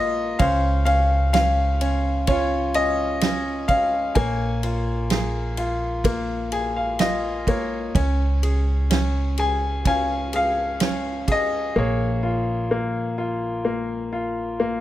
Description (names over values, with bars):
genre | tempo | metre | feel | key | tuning
acoustic folk-pop ballad | 64 BPM | 4/4 | straight | Db major | A4 = 436 Hz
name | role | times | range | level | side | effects
bright upright piano | melody | 0.0-14.8 s | Bb3 to Ab5 | -22 LUFS | left 2 dB | plate reverb
upright bass | bass | 0.0-14.8 s | Bb1 to Db2 | -25 LUFS | equal | none
natural country drum kit | drums | 0.4-11.5 s | kick drum, ride cymbal, snare drum | -25 LUFS | right 3 dB | none
room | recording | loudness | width
light reverb | none | -20 LUFS | side -14 dB against mid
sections
0.0-14.8 A section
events
upright piano fill 6.0-8.0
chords
0.4 Dbmaj7; 4.2 Bbm7; 8.0 Db; 11.8 Bbm7